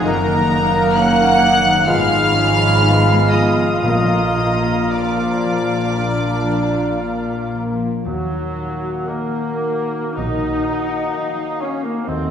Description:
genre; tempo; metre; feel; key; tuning
classical, slow romantic movement for symphony orchestra; 53-68 BPM; 4/4; rubato; Eb minor; A4 = 440 Hz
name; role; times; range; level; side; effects
rich studio violin section; melody; 0.0-11.9 s; Gb5 to Gb6; -23 LUFS; left 2 dB; none
dark cor anglais; second line; 0.0-12.3 s; Gb3 to Gb5; -27 LUFS; right 2 dB; none
large flute ensemble; second line; 0.0-12.3 s; Bb4 to Cb6; -28 LUFS; left 2 dB; none
mellow clarinet; second line; 0.0-12.3 s; Eb4 to Eb5; -28 LUFS; equal; none
warm studio violin section; second line; 0.0-11.9 s; Bb4 to Gb5; -25 LUFS; left 2 dB; none
dark studio viola section; accompaniment; 0.0-12.3 s; Gb3 to F4; -24 LUFS; equal; none
warm bassoon; accompaniment; 0.0-7.7 s; Ab3 to Bb3; -24 LUFS; right 2 dB; none
mellow French horn section; sustained chords; 0.0-12.3 s; F3 to Gb4; -26 LUFS; left 2 dB; none
concert harp; arpeggios; 0.0-12.3 s; Gb2 to Cb5; -26 LUFS; left 3 dB; none
dark trumpet section; stabs; 0.0-7.5 s; Bb4 to Gb5; -23 LUFS; equal; none
warm studio cello section; bass; 0.0-12.3 s; Eb2 to Bb2; -24 LUFS; right 1 dB; none
warm studio double bass section; bass; 0.0-12.3 s; Gb1 to Eb2; -24 LUFS; right 2 dB; none
timpani; percussion; 3.8-5.4 s; Bb2; -25 LUFS; equal; none
room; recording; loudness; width
wet scoring stage reverb, RT60 1.6 s; heard from further back in the room; -15 LUFS; side -8 dB against mid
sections
0.0-8.1 A section; 8.1-12.3 B section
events
none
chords
0.0 Ebm/Gb; 1.9 Fdim/Ab; 3.8 Bb; 8.1 Ebm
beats
| 0.02 0.98 1.88 2.82 | 3.84 4.91 5.99 7.03 | 8.06 9.09 10.18 11.15 | 12.08

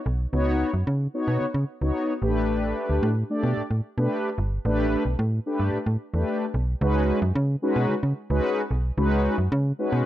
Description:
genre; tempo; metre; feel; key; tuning
early-eighties boogie funk; 111 BPM; 4/4; straight; unclear; A4 = 441 Hz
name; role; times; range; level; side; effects
slap-like FM bass; bass; 0.1-10.0 s; G1 to C#3; -24 LUFS; equal; none
mellow synth brass; accompaniment; 0.3-10.1 s; G#3 to D5; -25 LUFS; left 1 dB; chorus
room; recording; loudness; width
light reverb, digital ambience; dark, warm production; -22 LUFS; side -13 dB against mid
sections
0.0-6.8 A section; 6.8-10.1 B section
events
none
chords
0.0 C#9sus4; 2.2 A9sus4; 6.8 C#9sus4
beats
| 0.33 0.87 1.41 1.95 | 2.49 3.03 3.57 4.11 | 4.65 5.19 5.73 6.28 | 6.82 7.36 7.90 8.44 | 8.98 9.52

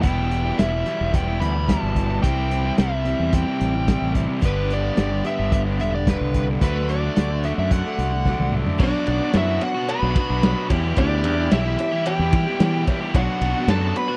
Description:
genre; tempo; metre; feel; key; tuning
classic rock; 110 BPM; 4/4; straight; E minor; A4 = 440 Hz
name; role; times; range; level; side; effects
fuzz lead guitar; melody; 0.0-14.2 s; B4 to B5; -29 LUFS; equal; distortion
picked steel-string acoustic guitar; accompaniment; 0.0-14.2 s; E2 to G4; -36 LUFS; equal; none
crunchy overdriven guitar; riff; 0.0-14.2 s; G2 to G4; -31 LUFS; equal; none
overdriven electric guitar; riff; 0.0-14.2 s; E2 to G4; -30 LUFS; equal; none
growling fingered electric bass; bass; 0.0-13.9 s; E1 to E3; -26 LUFS; equal; overdrive
vintage drum kit; drums; 0.0-14.1 s; crash cymbal, hi-hat, kick drum, ride cymbal, snare drum, toms; -23 LUFS; equal; none
lightly driven lead guitar; second line; 8.8-14.2 s; D4 to B4; -31 LUFS; equal; none
cowbell; percussion; 8.8-14.1 s; none; -37 LUFS; equal; none
room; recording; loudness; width
studio ambience; dry, close 1970s-style studio recording; -21 LUFS; mono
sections
0.0-8.8 A section; 8.8-14.2 B section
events
drum fill 8.3-8.8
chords
0.0 Em; 2.2 C; 4.4 G; 6.6 D; 8.8 Bm; 10.7 Em; 13.1 Bm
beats
| 0.04 0.59 1.14 1.69 | 2.24 2.78 3.33 3.88 | 4.43 4.97 5.52 6.07 | 6.62 7.16 7.71 8.26 | 8.80 9.35 9.89 10.43 | 10.98 11.52 12.06 12.60 | 13.15 13.69

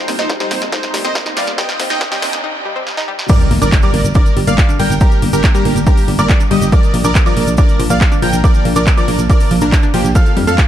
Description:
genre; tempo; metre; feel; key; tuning
uplifting trance; 140 BPM; 4/4; straight; G minor; A4 = 440 Hz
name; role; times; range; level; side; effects
supersaw stab; melody; 0.0-10.6 s; Bb3 to G5; -20 LUFS; right 1 dB; sidechain pumping, digital delay
shimmering ambient pad; sustained chords; 0.0-10.7 s; F3 to F4; -26 LUFS; equal; none
riser, swell and impact; sound effects; 0.0-5.0 s; none; -24 LUFS; equal; none
analog pluck; arpeggios; 0.1-10.5 s; F3 to Eb4; -22 LUFS; left 3 dB; chorus, sidechain pumping, digital delay
solid FM bass; bass; 0.1-10.6 s; Eb1 to F2; -17 LUFS; equal; sidechain pumping
big-room dance drum kit; drums; 0.1-10.7 s; crash cymbal, handclaps, hi-hat, snare drum; -22 LUFS; equal; high-pass filter on snare, sidechain pumping on hats, high-pass filter on hats, sidechain pumping on cymbals, high-pass filter on cymbals
electronic kick drum; drums; 0.3-10.7 s; none; -12 LUFS; equal; high-pass filter on kick
warm baby grand piano; second line; 3.3-10.6 s; G5 to G6; -24 LUFS; right 3 dB; sidechain pumping, digital delay
tube shaker; percussion; 3.3-10.7 s; none; -30 LUFS; right 4 dB; none
room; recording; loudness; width
digital ambience; dark, warm production, high-pass filter; -11 LUFS; side -11 dB against mid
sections
0.0-3.3 A section; 3.3-10.7 B section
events
build-up 0.0-3.3; drum fill 0.0-2.4, 2.9-3.3; riser 0.0-2.4; filter sweep on synth arpeggio sound 0.0-3.3; break 2.4-3.3; swell 2.4-3.3; drop 3.3-10.7; impact 3.3-5.0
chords
0.0 Cm/Eb; 3.3 Gm; 6.7 Bb; 10.2 Fadd9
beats
0.30 0.72 1.15 | 1.58 2.01 2.44 2.87 | 3.30 3.72 4.15 4.58 | 5.01 5.44 5.87 6.30 | 6.72 7.15 7.58 8.01 | 8.44 8.87 9.30 9.72 | 10.15 10.58

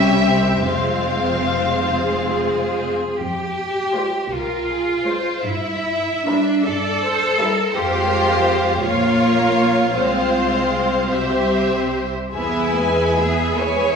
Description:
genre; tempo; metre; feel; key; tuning
classical, slow romantic movement for string orchestra; 46-58 BPM (dotted quarters); 6/8; rubato; F minor; A4 = 440 Hz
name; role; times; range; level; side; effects
rich studio violin section; melody; 0.0-14.0 s; Ab4 to G#5; -25 LUFS; left 4 dB; none
warm studio violin section; second line; 0.0-13.9 s; F4 to G#5; -22 LUFS; left 1 dB; none
clear studio viola section; accompaniment; 0.0-14.0 s; G3 to G#4; -22 LUFS; equal; none
clear studio cello section; bass; 0.0-14.0 s; F2 to C#5; -22 LUFS; right 1 dB; none
warm studio double bass section; bass; 0.0-14.0 s; F1 to G2; -27 LUFS; equal; none
room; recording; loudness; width
wet recital hall reverb, RT60 1.7 s; recorded in a church or concert hall, small room ambience; -17 LUFS; side -6 dB against mid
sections
0.0-3.2 A section; 3.2-14.0 A section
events
none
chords
0.0 C; 0.7 Fm; 5.4 Edim/G; 7.7 Fm; 8.8 Bbm; 10.0 Fm/C; 11.1 C; 12.3 E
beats
| 0.67 1.95 | 3.18 4.33 | 5.44 6.68 | 7.75 8.83 | 9.96 11.13 | 12.34 13.58

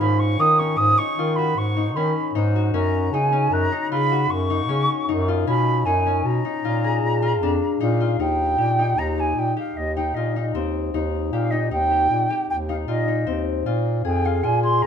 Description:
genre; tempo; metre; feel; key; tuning
contemporary instrumental, chamber music in an uneven meter; 154 BPM; 7/4; straight; Bb phrygian; A4 = 440 Hz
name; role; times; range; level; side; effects
mellow concert flute; melody; 0.0-14.9 s; Eb5 to Eb6; -23 LUFS; right 2 dB; none
concert harp; arpeggios; 0.0-14.9 s; C4 to Ab4; -25 LUFS; left 6 dB; none
mellow bass clarinet; bass; 0.0-14.9 s; Eb2 to Eb3; -23 LUFS; right 1 dB; none
celesta; texture; 3.5-3.9 s; Gb6; -30 LUFS; left 2 dB; none
room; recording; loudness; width
light reverb; close, detailed microphones; -19 LUFS; side -7 dB against mid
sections
0.0-8.2 A section; 8.2-14.9 B section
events
none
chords
0.0 Abm7; 2.7 Gb; 5.5 Bmaj7; 6.6 Bb7; 8.2 Eb; 13.7 Bb7(no3)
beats
| 0.01 0.40 0.79 1.18 1.57 1.96 2.35 | 2.74 3.13 3.52 3.91 4.30 4.69 5.08 | 5.47 5.86 6.25 6.64 7.03 7.42 7.81 | 8.20 8.59 8.98 9.37 9.76 10.15 10.54 | 10.93 11.32 11.71 12.10 12.49 12.88 13.28 | 13.67 14.06 14.45 14.84

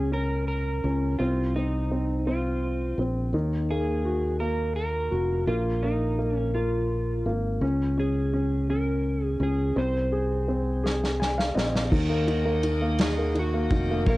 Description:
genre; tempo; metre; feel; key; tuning
six-eight pop ballad; 56 BPM (dotted quarters); 6/8; straight; unclear; A4 = 435 Hz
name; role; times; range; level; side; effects
electric slide guitar; melody; 0.0-14.2 s; Eb4 to C5; -31 LUFS; right 1 dB; cassette tape
clear concert grand piano; accompaniment; 0.0-14.2 s; Eb3 to Ab5; -27 LUFS; left 1 dB; cassette tape
fingered electric bass; bass; 0.0-14.2 s; F1 to Eb2; -28 LUFS; equal; none
unplugged drum kit; drums; 10.9-14.2 s; crash cymbal, kick drum, ride cymbal, snare drum; -28 LUFS; equal; none
bright tonewheel organ; sustained chords; 11.9-14.2 s; Bb4 to Eb6; -38 LUFS; equal; slow rotary speaker, cassette tape
room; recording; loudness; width
light reverb; home recording on cassette; -24 LUFS; side -18 dB against mid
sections
0.0-11.9 A section; 11.9-14.2 B section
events
grand piano fill 10.8-11.9; drum fill 10.8-11.9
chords
0.0 Db5; 1.2 Bbsus24; 3.3 Ebm; 5.5 Bb5; 7.6 Db5; 9.8 Ab/C; 11.9 Ebm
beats
0.13 | 1.20 2.27 | 3.34 4.41 | 5.48 6.55 | 7.62 8.70 | 9.77 10.84 | 11.92 12.99 | 14.07

